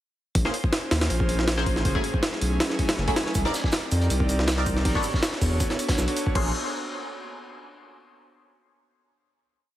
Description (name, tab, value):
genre	drum and bass, jungle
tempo	160 BPM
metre	4/4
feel	swing 53% on 16ths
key	unclear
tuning	A4 = 441 Hz
part	airy breathy pad	sustained chords	0.6-6.5 s	Gb3 to D5	-30 LUFS	right 1 dB	chorus
part	saturated sub bass	bass	0.4-6.5 s	Gb1 to F2	-25 LUFS	equal	none
part	jungle sampler-style drum kit	drums	0.4-6.4 s	crash cymbal, hi-hat, kick drum, snare drum	-25 LUFS	equal	overdrive
part	band-passed chord stab	stabs	0.5-6.5 s	Gb3 to D5	-32 LUFS	left 1 dB	phaser, lush chorus, dub echo
part	crunchy breakbeat drum kit	drums	3.3-6.3 s	hi-hat, shaker, snare drum	-34 LUFS	right 1 dB	high-pass filter on hats, high-pass filter on snare, high-pass filter on perc, high-pass filter on room
room	light reverb, small room reverb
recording	heavily compressed radio sound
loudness	-22 LUFS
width	side -14 dB against mid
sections	0.4-6.4 drop; 6.4-7.9 final chord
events	drop 0.4-6.4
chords	0.4 Bbm9; 1.9 Gbm9; 3.4 Cm9; 4.9 Bm9; 6.4 Bbm9